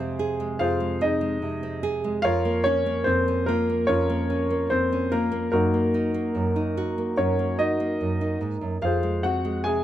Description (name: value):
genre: folk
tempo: 73 BPM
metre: 4/4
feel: straight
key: Bb minor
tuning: A4 = 440 Hz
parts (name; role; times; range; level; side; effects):
- dark grand piano; melody; 0.0-9.8 s; Bb3 to Ab5; -24 LUFS; left 1 dB; none
- nylon-string guitar; accompaniment; 0.0-9.8 s; F2 to Ab4; -26 LUFS; right 2 dB; none
room: light reverb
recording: close, detailed microphones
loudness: -22 LUFS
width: side -12 dB against mid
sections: 0.0-9.8 A section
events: none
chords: 0.0 Fm; 2.2 Bbm/F; 5.5 Ebm/Gb; 8.8 Fm